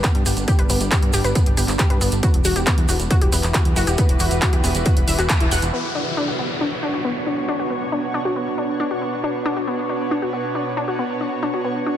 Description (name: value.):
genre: uplifting trance.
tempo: 137 BPM.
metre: 4/4.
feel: straight.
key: B minor.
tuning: A4 = 440 Hz.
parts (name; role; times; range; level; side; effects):
shimmering ambient pad; sustained chords; 0.0-12.0 s; B2 to C#5; -25 LUFS; right 2 dB; chorus, built-in reverb, sidechain pumping.
wide unison pluck; arpeggios; 0.0-11.9 s; B3 to F#5; -24 LUFS; left 2 dB; sidechain pumping, dub echo.
plucky analog bass; bass; 0.0-5.7 s; E1 to G2; -22 LUFS; equal; sidechain pumping.
electronic kick drum; drums; 0.0-5.4 s; none; -18 LUFS; equal; none.
punchy analog drum machine; drums; 0.0-5.7 s; handclaps, hi-hat; -25 LUFS; equal; low-pass filter on hats, low-pass filter on snare.
tube shaker; percussion; 0.0-5.7 s; none; -29 LUFS; right 5 dB; none.
downlifter; sound effects; 5.7-9.2 s; none; -29 LUFS; left 2 dB; none.
room: light reverb.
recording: none.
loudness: -18 LUFS.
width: side -10 dB against mid.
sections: 0.0-5.7 A section; 5.7-12.0 B section.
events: filter sweep on ambient pad 0.0-5.7; band accent 5.3.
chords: 0.0 G; 2.2 Emadd9; 5.7 Bmadd9.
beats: 0.04 | 0.48 0.92 1.35 1.79 | 2.23 2.67 3.10 3.54 | 3.98 4.42 4.86 5.29 | 5.73 6.17 6.61 7.05 | 7.49 7.92 8.36 8.80 | 9.24 9.68 10.11 10.55 | 10.99 11.43 11.87.